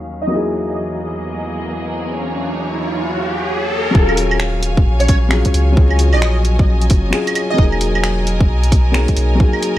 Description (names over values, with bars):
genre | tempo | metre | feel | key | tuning
future garage | 132 BPM | 4/4 | swing 62% on 16ths | Eb phrygian | A4 = 440 Hz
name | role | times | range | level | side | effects
felt-muted upright piano | accompaniment | 0.0-9.8 s | Gb3 to Ab4 | -22 LUFS | left 2 dB | sidechain pumping, tape echo
rich symphonic string section | sustained chords | 0.0-9.8 s | Eb2 to Ab5 | -24 LUFS | equal | vintage 12-bit sampler grit, sidechain pumping, low-pass filter
plucky unison lead | melody | 0.2-0.4, 5.0-7.6 s | Db5 to Eb5 | -24 LUFS | right 2 dB | ensemble chorus, analog delay
riser | sound effects | 1.3-3.9 s | none | -22 LUFS | equal | none
soft dub sub bass | bass | 4.0-9.5 s | Eb1 to Db2 | -16 LUFS | equal | sidechain pumping
electronic kick drum | drums | 4.0-9.5 s | none | -13 LUFS | equal | none
garage drum kit | drums | 4.1-9.7 s | claves, finger snaps, hi-hat | -22 LUFS | right 2 dB | none
room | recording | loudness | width
digital ambience | dry, gritty hardware recording, vinyl crackle, low-pass filter | -14 LUFS | side -14 dB against mid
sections
0.0-3.9 A section; 3.9-9.8 B section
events
filter sweep on string section 0.0-3.9; filter sweep 0.0-3.9; riser 1.3-3.9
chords
0.3 Emaj9#11; 3.9 Ebm11; 7.6 Emaj9#11